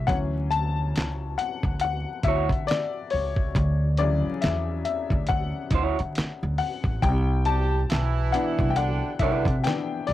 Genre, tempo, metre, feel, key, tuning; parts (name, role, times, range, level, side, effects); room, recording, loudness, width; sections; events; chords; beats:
R&B, neo-soul; 69 BPM; 4/4; swing 58% on 16ths; D major; A4 = 440 Hz
bright upright piano; accompaniment; 0.0-10.1 s; C#3 to A5; -28 LUFS; left 6 dB; cassette tape
upright bass; bass; 0.0-10.1 s; A1 to D3; -26 LUFS; equal
dusty soul sampler-style drum kit; drums; 0.1-10.1 s; handclaps, hi-hat, kick drum, snare drum; -27 LUFS; equal; cassette tape
electric guitar through a small old amp; second line; 1.8-9.4 s; E4 to D5; -27 LUFS; right 9 dB; cassette tape
bright horn section; stabs; 7.5-9.6 s; D3 to G4; -30 LUFS; right 7 dB; cassette tape
little or no reverb; home recording on cassette, vinyl crackle; -22 LUFS; side -14 dB against mid
0.1-10.1 A section
upright piano solo 0.1-10.1
0.1 Dmaj9; 7.0 Cmaj9
| 0.07 0.94 1.81 2.68 | 3.55 4.42 5.29 6.16 | 7.03 7.90 8.77 9.64